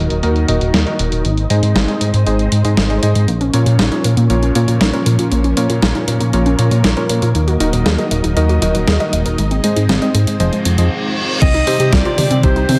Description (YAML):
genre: italo disco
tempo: 118 BPM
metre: 4/4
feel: straight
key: Bb minor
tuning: A4 = 441 Hz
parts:
  - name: string machine, full ensemble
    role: sustained chords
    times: 0.0-12.8 s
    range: Eb3 to Eb5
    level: -24 LUFS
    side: equal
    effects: ensemble chorus
  - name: warm electric grand piano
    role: stabs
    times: 0.0-12.7 s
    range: Bb2 to Eb5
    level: -24 LUFS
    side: equal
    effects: low-pass filter, delay
  - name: chorused synth bass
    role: bass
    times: 0.0-12.8 s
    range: Eb1 to C3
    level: -18 LUFS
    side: equal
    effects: none
  - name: clean 12-bit digital drum machine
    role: drums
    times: 0.1-12.8 s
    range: crash cymbal, hi-hat, snare drum, toms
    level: -22 LUFS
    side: equal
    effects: low-pass filter on hats, low-pass filter on snare, low-pass filter on cymbals, low-pass filter on toms, low-pass filter on room, gated reverb
  - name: warbly dusty pluck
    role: arpeggios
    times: 3.3-12.8 s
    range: F3 to Eb5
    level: -24 LUFS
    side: equal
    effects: chorus, delay
  - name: reverse cymbal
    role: sound effects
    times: 10.6-11.4 s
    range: none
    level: -24 LUFS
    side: equal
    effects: none
  - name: bright alto saxophone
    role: melody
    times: 11.4-12.8 s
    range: C5 to Eb5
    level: -21 LUFS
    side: equal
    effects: tape echo
  - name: electronic kick drum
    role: drums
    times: 11.4-12.5 s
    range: none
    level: -17 LUFS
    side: equal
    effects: none
room: light reverb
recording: none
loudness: -15 LUFS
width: mono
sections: 0.0-11.4 A section; 11.4-12.8 B section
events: filter sweep on string machine 0.0-11.4; reverse cymbal 10.6-11.4; break 10.9-11.4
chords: 0.0 Ebm; 1.2 Ab; 3.3 Bbm; 7.3 Ebm; 9.4 Ab; 10.4 Fm7; 11.4 Cm